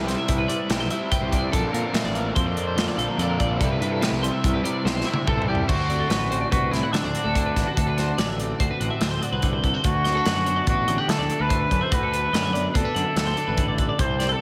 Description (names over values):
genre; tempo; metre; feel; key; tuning
math rock and midwest emo; 144 BPM; 5/4; straight; unclear; A4 = 440 Hz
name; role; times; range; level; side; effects
clean electric guitar; accompaniment; 0.0-14.4 s; A2 to E5; -32 LUFS; equal; lush chorus
twelve-string electric guitar; arpeggios; 0.0-14.4 s; E4 to G5; -31 LUFS; equal; lush chorus, tape echo
overdriven electric guitar; riff; 0.0-5.7 s; Bb2 to F4; -31 LUFS; equal; none
fuzz picked electric bass; bass; 0.0-14.3 s; A1 to D3; -30 LUFS; equal; overdrive
modern studio drum kit; drums; 0.1-14.3 s; crash cymbal, hi-hat, kick drum, snare drum, toms; -28 LUFS; equal; none
warm trumpet; melody; 5.3-14.4 s; D4 to C5; -28 LUFS; equal; none
room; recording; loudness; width
wet concert hall reverb, RT60 2.2 s; big arena sound; -23 LUFS; mono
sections
0.0-5.7 A section; 5.7-14.4 B section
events
drum fill 4.9-5.7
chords
0.0 Cmaj9; 1.5 Bbmaj9; 3.6 Cmaj7; 5.7 D7